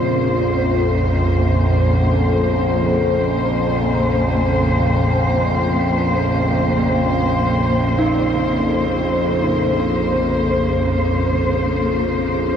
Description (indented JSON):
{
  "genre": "dark ambient drone",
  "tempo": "free time",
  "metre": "none",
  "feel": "none",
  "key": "Bb minor",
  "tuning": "A4 = 441 Hz",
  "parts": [
    { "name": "rich symphonic cello section", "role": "sustained chords", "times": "0.0-12.6 s", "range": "Db3 to C5", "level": "-20 LUFS", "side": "equal", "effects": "none" },
    { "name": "overtone-sweeping drone", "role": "drone", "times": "0.0-12.6 s", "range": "Bb1 to F2", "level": "-17 LUFS", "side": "equal", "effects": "chorus, built-in reverb, phaser" },
    { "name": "dark detuned synth bell", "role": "arpeggios", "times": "8.0-12.6 s", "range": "Eb4", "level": "-26 LUFS", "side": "right 2 dB", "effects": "chorus, phaser, ping-pong delay" }
  ],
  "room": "wet huge ambient reverb, RT60 8.4 s",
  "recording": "dark, warm production",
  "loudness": "-15 LUFS",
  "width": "side -8 dB against mid",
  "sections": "0.0-12.6 A section",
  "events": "none",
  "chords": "0.0 Bbm"
}